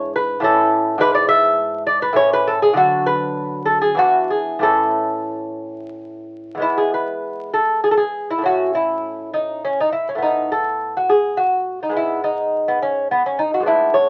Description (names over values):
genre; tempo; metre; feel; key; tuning
classical, baroque-style dance for lute; 89-107 BPM; 3/4; rubato; A major, E major from 6.6 s; A4 = 439 Hz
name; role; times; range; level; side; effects
lute; solo; 0.0-14.1 s; E2 to E5; -19 LUFS; equal; none
room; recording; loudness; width
moderate studio ambience, RT60 0.5 s; very old 78 rpm record, vinyl crackle; -18 LUFS; mono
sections
0.0-6.6 A section; 6.6-14.1 A section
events
none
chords
0.4 A; 1.0 E7/G#; 2.2 A; 2.8 D; 4.0 E7; 4.6 A; 6.6 E; 8.4 A; 10.2 B7/A; 12.0 G#madd11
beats
0.45 | 1.02 1.60 2.19 | 2.78 3.37 3.99 | 4.64 5.29 5.95 | 6.61 7.22 7.84 | 8.45 9.04 9.63 | 10.22 10.81 11.39 | 11.97 12.54 13.11 | 13.68